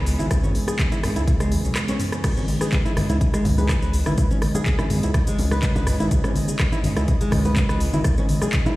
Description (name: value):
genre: afro house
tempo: 124 BPM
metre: 4/4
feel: straight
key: C# minor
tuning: A4 = 439 Hz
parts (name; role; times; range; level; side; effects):
- warm analog pad; sustained chords; 0.0-8.8 s; C#3 to D#5; -29 LUFS; right 1 dB; chorus, sidechain pumping
- flamenco guitar; arpeggios; 0.0-8.7 s; G#3 to B4; -28 LUFS; equal; sidechain pumping, digital delay
- dark detuned saw bass; bass; 0.0-8.3 s; G#1 to E2; -24 LUFS; equal; sidechain pumping
- afro-pop drum kit; drums; 0.1-8.8 s; cabasa, crash cymbal, handclaps, hi-hat, rim click, toms; -27 LUFS; equal; none
- electronic kick drum; drums; 0.3-8.6 s; none; -22 LUFS; equal; none
- congas; percussion; 2.5-8.8 s; none; -27 LUFS; left 1 dB; none
- expressive portamento lead; melody; 2.6-5.2 s; G#4 to B4; -36 LUFS; equal; analog chorus, digital delay
room: light reverb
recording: played on a big sound system in a bare room, stone room reverb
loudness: -18 LUFS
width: side -18 dB against mid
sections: 0.0-8.8 A section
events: break 1.8-2.2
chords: 0.0 C#m9